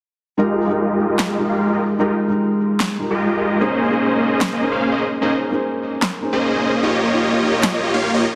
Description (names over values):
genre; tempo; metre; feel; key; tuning
future bass; 149 BPM; 4/4; half-time; F minor; A4 = 436 Hz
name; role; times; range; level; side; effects
felt-muted upright piano; accompaniment; 0.4-6.9 s; Ab3 to C5; -23 LUFS; equal; digital delay
supersaw chords; riff; 0.4-8.3 s; Ab3 to F5; -21 LUFS; equal; low-pass filter, digital delay
electronic snare drum and handclaps; drums; 1.2-7.7 s; none; -24 LUFS; equal; overdrive
thumb-piano-like synth pluck; arpeggios; 6.8-8.3 s; Eb4 to Eb5; -28 LUFS; equal; chorus, digital delay
room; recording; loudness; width
light reverb, digital ambience; dense, heavily limited modern master; -19 LUFS; mono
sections
0.4-8.3 A section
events
filter sweep on supersaw synth 0.4-8.3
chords
0.4 Fm11; 3.6 Bbm11; 6.8 Eb9